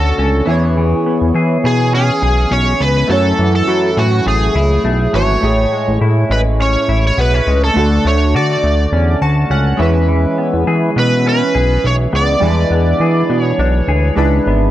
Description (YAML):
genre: indie pop, bedroom pop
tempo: 103 BPM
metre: 4/4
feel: swing 55% on 16ths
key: unclear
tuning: A4 = 440 Hz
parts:
  - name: overdriven slide guitar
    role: melody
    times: 0.0-14.1 s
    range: F#4 to D5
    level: -17 LUFS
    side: right 1 dB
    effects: analog chorus, tape echo
  - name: chorused retro synth keys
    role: accompaniment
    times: 0.0-14.7 s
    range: G3 to A5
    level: -19 LUFS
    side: right 2 dB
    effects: phaser, cassette tape
  - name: semi-hollow electric guitar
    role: accompaniment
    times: 0.0-14.7 s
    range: F#2 to G#4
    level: -20 LUFS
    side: left 3 dB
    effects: analog chorus, vibrato effect
  - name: fat analog bass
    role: bass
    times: 0.0-14.7 s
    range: G#1 to F#3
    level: -14 LUFS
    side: equal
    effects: none
room: light reverb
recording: dark, warm production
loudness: -11 LUFS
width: side -13 dB against mid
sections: 0.0-14.7 A section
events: synth keys fill 8.9-10.1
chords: 0.5 C#m7/E; 3.1 F#m7; 5.4 Amaj7; 7.8 Dmaj7; 9.8 C#m7/E; 12.4 E7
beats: 0.19 | 0.77 1.35 1.94 2.52 | 3.10 3.69 4.27 4.85 | 5.43 6.01 6.60 7.18 | 7.76 8.35 8.93 9.51 | 10.09 10.68 11.26 11.84 | 12.42 13.01 13.59 14.17